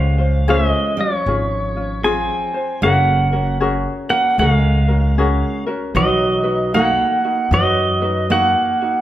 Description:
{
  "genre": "Hawaiian",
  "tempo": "77 BPM",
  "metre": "4/4",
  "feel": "swing 63% on 8ths",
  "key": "F# major",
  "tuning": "A4 = 443 Hz",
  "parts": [
    { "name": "pedal steel guitar", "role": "melody", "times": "0.0-9.0 s", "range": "Db5 to Ab5", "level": "-18 LUFS", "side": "right 1 dB", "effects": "none" },
    { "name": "fingerpicked steel-string acoustic guitar", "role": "second line", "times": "0.0-9.0 s", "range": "F3 to C4", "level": "-22 LUFS", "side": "right 3 dB", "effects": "none" },
    { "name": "ukulele", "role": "accompaniment", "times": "0.0-9.0 s", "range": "Db4 to C5", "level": "-22 LUFS", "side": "left 3 dB", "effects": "none" },
    { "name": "upright bass", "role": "bass", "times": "0.0-8.5 s", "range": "F#1 to F#2", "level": "-19 LUFS", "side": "equal", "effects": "none" }
  ],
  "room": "moderate large studio reverb, RT60 1.4 s",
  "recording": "band playing live in one room",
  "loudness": "-15 LUFS",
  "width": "side -13 dB against mid",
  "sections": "0.0-2.8 A section; 2.8-9.0 B section",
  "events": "none",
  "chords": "0.0 Dbmaj7; 2.8 F#add9; 6.0 Bmaj7"
}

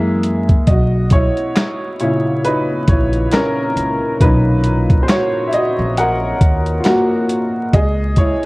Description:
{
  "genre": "lo-fi hip hop",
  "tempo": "68 BPM",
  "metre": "4/4",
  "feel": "swing 59% on 16ths",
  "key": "B major",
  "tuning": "A4 = 440 Hz",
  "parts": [
    { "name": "warm upright piano", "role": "accompaniment", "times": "0.0-8.5 s", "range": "A#2 to F#5", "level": "-16 LUFS", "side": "equal", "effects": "cassette tape" },
    { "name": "upright bass", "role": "bass", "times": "0.0-8.3 s", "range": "A#1 to F#2", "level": "-18 LUFS", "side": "equal", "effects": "none" },
    { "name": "dusty soul sampler-style drum kit", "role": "drums", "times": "0.2-8.5 s", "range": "handclaps, hi-hat, kick drum, snare drum", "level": "-14 LUFS", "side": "equal", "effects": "vintage 12-bit sampler grit" }
  ],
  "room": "light reverb",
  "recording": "vinyl crackle",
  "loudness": "-13 LUFS",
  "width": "side -23 dB against mid",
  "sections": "0.0-8.5 A section",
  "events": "upright piano solo 0.0-8.5",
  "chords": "0.0 F#9; 0.7 Bmaj9; 7.7 Amaj7/C# (rootless)"
}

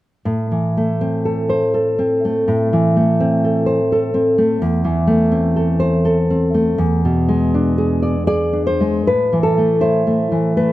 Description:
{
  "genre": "romantic piece for solo classical guitar",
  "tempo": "73-86 BPM",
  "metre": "3/4",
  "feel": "rubato",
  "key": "A minor",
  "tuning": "A4 = 445 Hz",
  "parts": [
    { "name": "nylon-string guitar", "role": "solo", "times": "0.3-10.7 s", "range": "E2 to D5", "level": "-14 LUFS", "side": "equal", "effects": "none" }
  ],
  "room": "light reverb",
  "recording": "close, detailed microphones",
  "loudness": "-14 LUFS",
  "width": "side -15 dB against mid",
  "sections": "0.3-9.1 A section; 9.1-10.7 B section",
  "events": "none",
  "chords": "0.3 Am; 4.6 Am/E; 6.8 E7; 9.1 Am"
}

